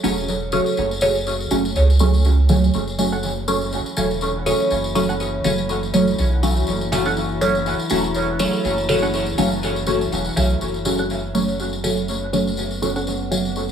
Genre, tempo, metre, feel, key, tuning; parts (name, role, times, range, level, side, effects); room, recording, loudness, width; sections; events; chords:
dub techno; 122 BPM; 4/4; swing 56% on 16ths; F# minor; A4 = 440 Hz
filtered dub chord stab; stabs; 0.0-13.4 s; C#3 to C#4; -20 LUFS; right 1 dB; phaser, dub echo
soft dub sub bass; bass; 0.0-13.7 s; E1 to C#2; -23 LUFS; right 1 dB
tambourine; percussion; 0.0-13.7 s; -29 LUFS; left 2 dB; dub echo
metallic inharmonic drone; texture; 3.7-13.7 s; E3 to E4; -30 LUFS; left 1 dB; chorus, built-in reverb
filtered dub chord stab; riff; 3.1-13.1 s; C#4 to F#5; -31 LUFS; right 3 dB; wide subtle chorus, vintage 12-bit sampler grit, dub echo
moderate echo chamber reverb, RT60 1.4 s, digital ambience; echo-heavy mix; -18 LUFS; side -8 dB against mid
0.0-10.6 A section; 10.6-13.7 B section
0.0 F#m